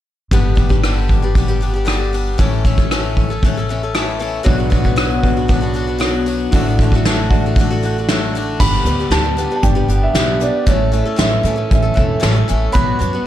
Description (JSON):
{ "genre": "folk rock and heartland rock", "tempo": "116 BPM", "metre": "4/4", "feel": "straight", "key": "unclear", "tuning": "A4 = 439 Hz", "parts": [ { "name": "picked swing-style acoustic guitar", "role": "accompaniment", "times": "0.3-13.3 s", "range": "G2 to A4", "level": "-22 LUFS", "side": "left 4 dB", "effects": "none" }, { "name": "upright bass", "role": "bass", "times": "0.3-13.2 s", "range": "E1 to A2", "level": "-19 LUFS", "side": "equal", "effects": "none" }, { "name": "soft brush drum kit", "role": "drums", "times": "0.3-13.1 s", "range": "crash cymbal, hi-hat, kick drum, rim click, snare drum", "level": "-17 LUFS", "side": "equal", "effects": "none" }, { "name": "electric guitar through a small old amp", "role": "riff", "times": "4.4-13.3 s", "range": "G2 to A4", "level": "-22 LUFS", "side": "right 2 dB", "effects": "none" }, { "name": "dark grand piano", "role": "melody", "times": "8.6-13.3 s", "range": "C#5 to B5", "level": "-21 LUFS", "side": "right 3 dB", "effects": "digital delay" } ], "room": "light reverb, studio reverb", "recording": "dark, warm production", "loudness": "-13 LUFS", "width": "side -12 dB against mid", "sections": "0.3-8.6 A section; 8.6-13.3 B section", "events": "none", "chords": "0.3 G; 2.4 A; 4.5 Bm; 6.5 D/A; 8.6 G; 10.7 A; 12.8 Bm", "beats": "| 0.31 0.83 1.35 1.86 | 2.38 2.90 3.42 3.94 | 4.45 4.97 5.49 6.01 | 6.53 7.04 7.56 8.08 | 8.60 9.12 9.63 10.15 | 10.67 11.19 11.71 12.23 | 12.75" }